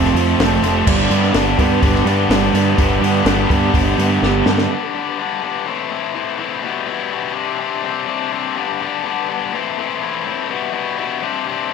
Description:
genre	indie rock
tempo	124 BPM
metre	4/4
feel	straight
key	G major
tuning	A4 = 440 Hz
part	string machine, full ensemble	sustained chords	0.0-4.7 s	D4 to A5	-27 LUFS	equal	none
part	high-gain distorted guitar	riff	0.0-11.7 s	F2 to E4	-19 LUFS	left 9 dB	distortion
part	raw garage guitar	riff	0.0-4.7 s	F2 to D4	-18 LUFS	right 8 dB	overdrive, lush chorus, dub echo
part	growling picked electric bass	bass	0.0-4.7 s	F1 to G2	-19 LUFS	equal	overdrive
part	compact cocktail drum kit	drums	0.0-4.7 s	crash cymbal, hi-hat, kick drum, snare drum	-20 LUFS	equal	dub echo
room	light reverb, small room ambience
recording	echo-heavy mix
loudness	-15 LUFS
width	side -6 dB against mid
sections	0.0-4.7 A section; 4.7-11.7 B section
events	drum fill 4.2-4.7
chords	0.0 Fadd9; 0.9 Gadd9; 2.8 Gmaj7; 4.7 G; 5.7 Am; 6.6 Em/B; 7.3 Csus2; 8.6 G; 9.5 Am; 10.5 Em/B; 11.2 Csus2

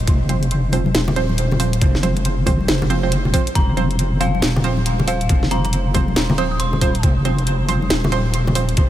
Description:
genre	deep dubstep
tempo	138 BPM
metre	4/4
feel	swing 62% on 16ths, half-time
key	unclear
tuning	A4 = 445 Hz
part	deep soft wobble bass	bass	0.0-8.9 s	Eb1 to F1	-19 LUFS	equal	chorus
part	electronic kick drum	drums	0.1-8.9 s	none	-17 LUFS	equal	small room ambience
part	garage drum kit	drums	0.1-8.9 s	hi-hat, snare drum	-24 LUFS	equal	small room ambience
part	filtered dub chord stab	stabs	0.3-8.7 s	F3 to C5	-24 LUFS	right 5 dB	chorus, dub echo
part	congas	percussion	0.3-8.5 s	none	-25 LUFS	left 2 dB	none
part	dark detuned synth bell	melody	3.6-7.0 s	F5 to Eb6	-29 LUFS	left 2 dB	chorus, dub echo
room	light reverb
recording	none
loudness	-16 LUFS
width	side -12 dB against mid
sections	0.0-8.9 A section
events	none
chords	0.0 F5

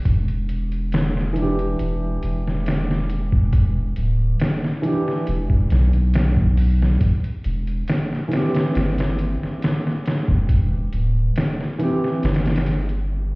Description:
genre	trip hop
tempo	69 BPM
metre	4/4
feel	straight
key	E minor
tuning	A4 = 440 Hz
part	soft dub sub bass	bass	0.1-13.4 s	D1 to B1	-20 LUFS	equal	none
part	trip hop sampler-style drum kit	drums	0.1-13.1 s	hi-hat, kick drum, snare drum	-21 LUFS	equal	overdrive
part	dark upright piano	accompaniment	1.3-12.2 s	E3 to G4	-25 LUFS	right 1 dB	tremolo, vintage 12-bit sampler grit, tape echo
room	light reverb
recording	heard muffled through a wall, stone room reverb, vinyl crackle, EQ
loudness	-18 LUFS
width	side -26 dB against mid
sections	0.0-13.4 A section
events	none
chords	0.1 Em7; 7.0 C/E

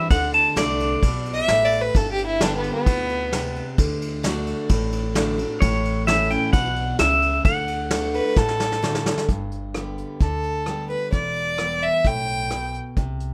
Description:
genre	honky-tonk and classic country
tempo	131 BPM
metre	4/4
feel	straight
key	G major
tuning	A4 = 440 Hz
part	pedal steel guitar	melody	0.0-1.7, 5.6-8.8 s	C#5 to A5	-24 LUFS	equal	none
part	picked steel-string acoustic guitar	accompaniment	0.0-13.3 s	E2 to G4	-30 LUFS	equal	none
part	upright bass	bass	0.1-13.3 s	E1 to D2	-32 LUFS	equal	none
part	vintage brush drum kit	drums	0.1-13.3 s	hi-hat, kick drum, ride cymbal, rim click, snare drum	-26 LUFS	equal	none
part	rich fiddle	second line	1.3-3.6, 8.1-12.7 s	B3 to G5	-25 LUFS	equal	none
room	little or no reverb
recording	rough home demo mix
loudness	-22 LUFS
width	mono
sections	0.0-9.3 A section; 9.3-13.3 B section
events	drum fill 8.4-9.3; fiddle solo 9.3-13.3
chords	0.1 D; 1.9 G; 3.8 D; 5.6 A; 7.5 D; 9.3 G; 11.1 Em

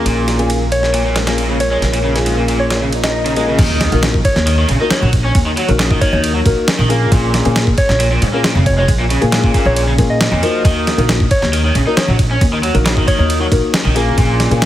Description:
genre	breakbeat, breaks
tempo	136 BPM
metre	4/4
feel	straight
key	Eb minor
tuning	A4 = 439 Hz
part	deep dark ambient pad	sustained chords	0.0-3.6 s	Bb3 to Db5	-25 LUFS	equal	chorus, built-in reverb, sidechain pumping
part	raw garage guitar	riff	0.0-14.6 s	Ab2 to Eb4	-20 LUFS	equal	overdrive, vintage 12-bit sampler grit, dub echo
part	dark concert grand piano	stabs	0.0-14.7 s	Bb3 to Bb4	-20 LUFS	left 3 dB	dub echo
part	upright bass	bass	0.0-14.7 s	F1 to Bb2	-16 LUFS	equal	none
part	dusty soul sampler-style drum kit	drums	0.1-14.7 s	crash cymbal, kick drum, ride cymbal, snare drum	-17 LUFS	equal	high-pass filter on cymbals, studio reverb, high-pass filter on snare, high-pass filter on kick
part	soft struck synth lead	melody	0.7-13.3 s	Db5 to Eb5	-21 LUFS	equal	chorus, small speaker sound, dub echo
part	swell and impact	sound effects	2.9-5.4 s	none	-25 LUFS	equal	none
room	light reverb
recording	heavily compressed radio sound, multiband compression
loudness	-12 LUFS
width	side -13 dB against mid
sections	0.0-3.6 A section; 3.6-14.7 B section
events	swell 2.9-3.6; drop 3.6-14.7; impact 3.6-5.4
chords	0.1 Bbm7; 3.6 Ebm; 7.1 Bbm7; 10.6 Ebm

